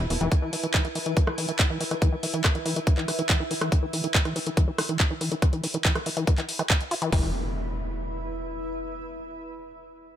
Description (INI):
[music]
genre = psychedelic trance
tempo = 141 BPM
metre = 4/4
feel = straight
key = unclear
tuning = A4 = 437 Hz
[part]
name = tight sequencer bass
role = bass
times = 0.0-0.3, 7.1-7.3 s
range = E1 to F1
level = -28 LUFS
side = equal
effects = tube saturation
[part]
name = drum and bass drum kit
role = drums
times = 0.0-7.1 s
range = handclaps, hi-hat, rim click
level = -28 LUFS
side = equal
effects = none
[part]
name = granular cloud pad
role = texture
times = 0.0-8.8 s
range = E4 to E6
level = -36 LUFS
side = equal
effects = built-in reverb, sidechain pumping
[part]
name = overdriven acid bass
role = riff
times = 0.1-7.3 s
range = D3 to F4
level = -30 LUFS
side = moving between left 4 dB and right 3 dB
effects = auto-pan, sidechain pumping, digital delay
[part]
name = drum and bass drum kit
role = drums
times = 0.3-7.2 s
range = hi-hat, kick drum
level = -22 LUFS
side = equal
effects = none
[part]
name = impact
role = sound effects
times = 7.1-8.8 s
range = none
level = -34 LUFS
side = equal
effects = none
[sound]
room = little or no reverb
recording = none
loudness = -23 LUFS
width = side -10 dB against mid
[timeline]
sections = 0.0-7.1 A section; 7.1-8.8 B section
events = fade-out on ambient pad 0.0-7.1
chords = 0.0 E5